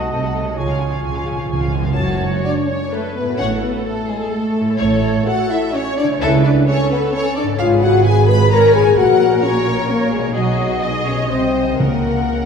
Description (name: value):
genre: classical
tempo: 129 BPM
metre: 3/4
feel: rubato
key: F# minor, F# major from 7.6 s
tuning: A4 = 440 Hz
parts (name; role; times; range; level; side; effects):
- rich symphonic violin section; melody; 0.0-12.5 s; G#4 to A5; -27 LUFS; left 3 dB; none
- mellow clarinet; second line; 0.0-1.7 s; E#4 to Gb4; -33 LUFS; right 1 dB; none
- mellow hollow concert flute; second line; 0.0-1.7 s; G#5 to A5; -30 LUFS; equal; none
- rich studio violin section; second line; 0.0-12.5 s; E#4 to B5; -24 LUFS; left 2 dB; none
- warm oboe; second line; 0.0-1.7 s; C#5 to Eb5; -28 LUFS; right 3 dB; none
- rich symphonic viola section; accompaniment; 0.0-12.5 s; C4 to D#5; -26 LUFS; equal; none
- mellow French horn section; sustained chords; 0.0-12.5 s; F#3 to B4; -18 LUFS; left 2 dB; none
- concert harp; arpeggios; 0.0-12.5 s; F#2 to Eb5; -27 LUFS; left 3 dB; none
- dark symphonic cello section; bass; 0.0-12.5 s; F#2 to C#3; -22 LUFS; right 3 dB; none
- rich symphonic double bass section; bass; 0.0-12.5 s; F#1 to C#2; -23 LUFS; right 3 dB; none
- timpani; percussion; 0.6-2.6, 11.8-12.5 s; F#2 to C#3; -23 LUFS; equal; none
room: wet scoring stage reverb, RT60 2.1 s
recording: heard from further back in the room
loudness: -14 LUFS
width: side -6 dB against mid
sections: 0.0-2.0 A section; 2.0-12.5 B section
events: timpani fill 0.6-2.0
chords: 0.0 Cdim7; 0.6 C#; 2.0 F#m; 3.4 F#m/A; 4.8 A; 6.2 A/C#; 7.6 C#5/G#; 9.0 F#/A#; 10.4 G#m7/B; 11.3 Cdim7; 11.8 F#/C#